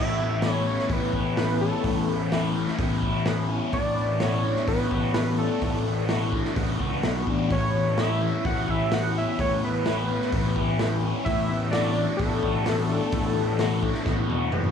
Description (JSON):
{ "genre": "psychedelic rock", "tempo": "127 BPM", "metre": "4/4", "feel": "straight", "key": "A major", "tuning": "A4 = 440 Hz", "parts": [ { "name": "fat analog lead", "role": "melody", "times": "0.0-14.5 s", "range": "A4 to F#5", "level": "-29 LUFS", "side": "equal", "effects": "chorus, dub echo" }, { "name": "overdriven electric guitar", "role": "riff", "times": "0.0-14.7 s", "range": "A2 to F#4", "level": "-28 LUFS", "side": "left 2 dB", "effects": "phaser, dub echo" }, { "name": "fuzz picked electric bass", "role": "bass", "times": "0.0-14.7 s", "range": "E1 to C#2", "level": "-27 LUFS", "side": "left 2 dB", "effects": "overdrive" }, { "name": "raw garage drum kit", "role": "drums", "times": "0.4-14.7 s", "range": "hi-hat, kick drum, snare drum, toms", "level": "-29 LUFS", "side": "equal", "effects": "dub echo" } ], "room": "light reverb, studio reverb", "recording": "echo-heavy mix", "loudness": "-22 LUFS", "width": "side -7 dB against mid", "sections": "0.0-14.7 A section", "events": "drum fill 14.1-14.7", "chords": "0.0 Aadd9; 3.7 D6/A; 7.5 Aadd9; 11.3 D6/A", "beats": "0.42 0.90 1.37 | 1.84 2.32 2.79 3.26 | 3.73 4.21 4.68 5.15 | 5.62 6.10 6.57 7.04 | 7.51 7.98 8.45 8.92 | 9.39 9.86 10.33 10.80 | 11.27 11.73 12.20 12.67 | 13.13 13.60 14.07 14.54" }